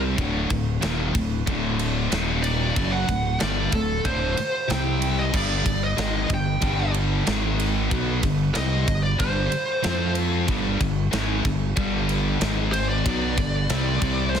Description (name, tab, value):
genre	heavy metal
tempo	93 BPM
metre	4/4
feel	straight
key	unclear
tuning	A4 = 440 Hz
part	sludgy distorted guitar	riff	0.0-14.4 s	D2 to F4	-27 LUFS	equal	overdrive
part	tight distorted guitar	riff	0.0-14.4 s	D2 to F4	-28 LUFS	left 1 dB	distortion
part	modern bright fingered electric bass	bass	0.0-14.4 s	D1 to F2	-26 LUFS	equal	none
part	tight metal drum kit	drums	0.2-14.4 s	crash cymbal, kick drum, ride cymbal, snare drum	-28 LUFS	equal	soft clipping on kick
part	high-gain lead guitar	melody	2.4-14.4 s	A4 to G5	-27 LUFS	equal	distortion
room	small room ambience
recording	dense, heavily limited modern master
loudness	-21 LUFS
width	side -8 dB against mid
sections	0.0-14.4 A section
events	none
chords	0.2 D5; 2.1 Eb5; 2.8 D; 4.7 C5; 5.3 G5; 7.3 G#5; 7.9 G5; 9.8 F5; 10.5 G5; 12.4 G#5; 13.1 G5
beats	| 0.18 0.83 1.47 2.11 | 2.76 3.40 4.04 4.69 | 5.33 5.97 6.62 7.26 | 7.91 8.55 9.19 9.84 | 10.48 11.12 11.77 12.41 | 13.05 13.70 14.34